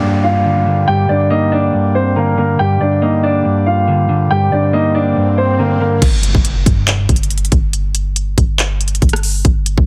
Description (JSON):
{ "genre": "hip hop, trap", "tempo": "140 BPM", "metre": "4/4", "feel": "half-time", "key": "G minor", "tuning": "A4 = 440 Hz", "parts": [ { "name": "warm concert grand piano", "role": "melody", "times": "0.0-6.0 s", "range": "Bb3 to G5", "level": "-18 LUFS", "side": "equal", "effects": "low-pass filter" }, { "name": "mellow electric guitar", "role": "accompaniment", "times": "0.0-6.0 s", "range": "G2 to D4", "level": "-17 LUFS", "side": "equal", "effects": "low-pass filter" }, { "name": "mellow accordion", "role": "sustained chords", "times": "0.0-6.0 s", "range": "D3 to G4", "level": "-26 LUFS", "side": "equal", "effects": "none" }, { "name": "downlifter, swell and impact", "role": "sound effects", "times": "0.0-7.7 s", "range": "none", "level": "-28 LUFS", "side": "equal", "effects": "none" }, { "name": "clean 808-style bass", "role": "bass", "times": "6.0-9.9 s", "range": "G1 to G2", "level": "-19 LUFS", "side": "equal", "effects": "none" }, { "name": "trap drum kit", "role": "drums", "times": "6.0-9.9 s", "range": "crash cymbal, handclaps, hi-hat, kick drum, rim click", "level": "-16 LUFS", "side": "equal", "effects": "none" } ], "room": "little or no reverb", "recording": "heavily compressed radio sound", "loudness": "-14 LUFS", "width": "mono", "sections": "0.0-6.0 A section; 6.0-9.9 B section", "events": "swell 4.6-6.0; impact 6.0-7.7", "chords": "0.0 Gm; 6.0 N.C.", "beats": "0.02 0.45 | 0.88 1.30 1.73 2.16 | 2.59 3.02 3.45 3.88 | 4.30 4.73 5.16 5.59 | 6.02 6.45 6.88 7.30 | 7.73 8.16 8.59 9.02 | 9.45" }